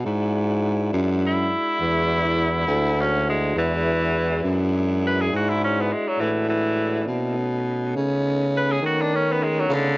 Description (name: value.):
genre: slow blues.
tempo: 68 BPM (dotted quarters).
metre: 12/8.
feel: straight.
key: E mixolydian.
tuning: A4 = 441 Hz.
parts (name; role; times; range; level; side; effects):
tonewheel organ; sustained chords; 0.0-10.0 s; G#3 to F#4; -29 LUFS; equal; slow rotary speaker, chorus vibrato.
growling baritone saxophone; bass; 0.1-10.0 s; D2 to D#3; -22 LUFS; equal; none.
bright tenor saxophone; melody; 1.3-10.0 s; D3 to B4; -23 LUFS; equal; none.
room: light reverb.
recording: worn, warbling old tape, cassette tape, warbly pitch drift, nothing above 7.6 kHz.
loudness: -20 LUFS.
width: side -22 dB against mid.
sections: 0.0-10.0 A section.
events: tenor saxophone solo 0.0-10.0.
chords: 0.0 E9; 7.1 B9.